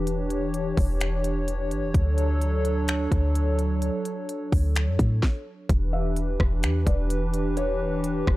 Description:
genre	hip hop, atmospheric cloud-rap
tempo	128 BPM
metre	4/4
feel	half-time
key	unclear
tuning	A4 = 440 Hz
part	hollow soft pad	sustained chords	0.0-8.4 s	E3 to C#5	-28 LUFS	equal	chorus, sidechain pumping
part	clean 808-style bass	bass	0.0-8.4 s	E1 to A2	-25 LUFS	equal	tube saturation
part	trap drum kit	drums	0.1-8.4 s	finger snaps, hi-hat, kick drum, rim click, snare drum	-25 LUFS	equal	none
part	felt-muted upright piano	melody	5.9-8.4 s	C#5 to E5	-33 LUFS	left 2 dB	analog delay
room	little or no reverb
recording	dry, gritty hardware recording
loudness	-22 LUFS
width	side -17 dB against mid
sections	0.0-5.7 A section; 5.7-8.4 B section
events	stop 5.2-5.7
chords	0.0 Em7; 1.9 Dmaj7; 5.7 Em7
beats	| 0.07 0.54 1.01 1.48 | 1.95 2.41 2.88 3.35 | 3.82 4.29 4.76 5.23 | 5.70 6.16 6.63 7.10 | 7.57 8.04

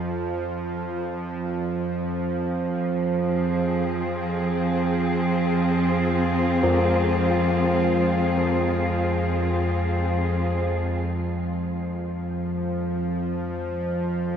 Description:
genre	dark ambient drone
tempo	free time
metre	none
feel	none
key	F minor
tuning	A4 = 440 Hz
part	bowed-like drone	drone	0.0-14.4 s	F2 to F3	-25 LUFS	right 1 dB	built-in reverb
part	warm studio cello section	sustained chords	1.8-11.0 s	F3 to Ab4	-26 LUFS	equal	shimmer reverb
part	carillon bells	arpeggios	6.6-13.6 s	F3	-26 LUFS	left 2 dB	ping-pong delay, shimmer reverb
room	wet huge ambient reverb, RT60 8.7 s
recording	none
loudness	-22 LUFS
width	side -8 dB against mid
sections	0.0-11.0 A section; 11.0-14.4 B section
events	none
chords	0.0 Fm; 11.0 N.C.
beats	free time

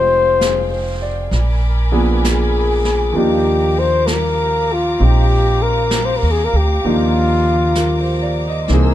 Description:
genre	jazz ballad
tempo	65 BPM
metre	4/4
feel	swing 67% on 8ths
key	Eb major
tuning	A4 = 440 Hz
part	breathy flugelhorn	melody	0.0-8.9 s	F4 to C5	-17 LUFS	left 3 dB	none
part	clear concert grand piano	accompaniment	0.0-8.9 s	E3 to Eb5	-21 LUFS	right 1 dB	none
part	dark studio string section	sustained chords	0.0-8.9 s	Ab3 to E6	-26 LUFS	left 1 dB	none
part	upright bass	bass	0.0-8.9 s	F1 to Eb2	-17 LUFS	equal	none
part	jazz brush drum kit	drums	0.4-8.9 s	brushed snare drum, hi-hat, snare drum	-26 LUFS	right 1 dB	none
room	light reverb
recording	dark, warm production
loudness	-13 LUFS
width	side -12 dB against mid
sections	0.0-8.9 A section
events	none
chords	0.0 Fm9; 1.3 Bb7b9; 3.1 Ebmaj9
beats	0.39 1.31 2.23 | 3.15 4.07 4.99 5.91 | 6.83 7.76 8.69

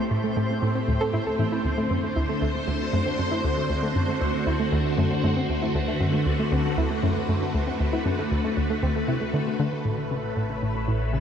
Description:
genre	ambient, sequencer-driven space music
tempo	117 BPM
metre	4/4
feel	straight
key	unclear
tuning	A4 = 440 Hz
part	phased string machine	sustained chords	0.0-11.2 s	A2 to C#5	-27 LUFS	left 1 dB	ensemble chorus, phaser
part	soft round pluck	arpeggios	0.0-9.7 s	A2 to A4	-30 LUFS	right 2 dB	chorus, auto-pan, analog delay
part	twinkling granular texture	texture	0.0-11.2 s	C4 to E5	-33 LUFS	right 1 dB	built-in reverb
part	hollow square pluck	riff	0.1-11.2 s	D2 to D3	-26 LUFS	left 1 dB	chorus, analog delay
part	round analog bass	bass	9.9-11.2 s	A1	-33 LUFS	equal	tube saturation
room	wet huge ambient reverb, RT60 7.9 s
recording	dreamy mix soaked in reverb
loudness	-22 LUFS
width	side -8 dB against mid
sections	0.0-9.9 A section; 9.9-11.2 B section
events	filter sweep on synth arpeggio sound 0.0-9.9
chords	0.0 Am7; 1.6 D7; 9.9 Aadd9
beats	0.11 0.62 1.14 | 1.65 2.16 2.67 3.19 | 3.70 4.21 4.73 5.24 | 5.75 6.26 6.78 7.29 | 7.80 8.32 8.83 9.34 | 9.85 10.37 10.88

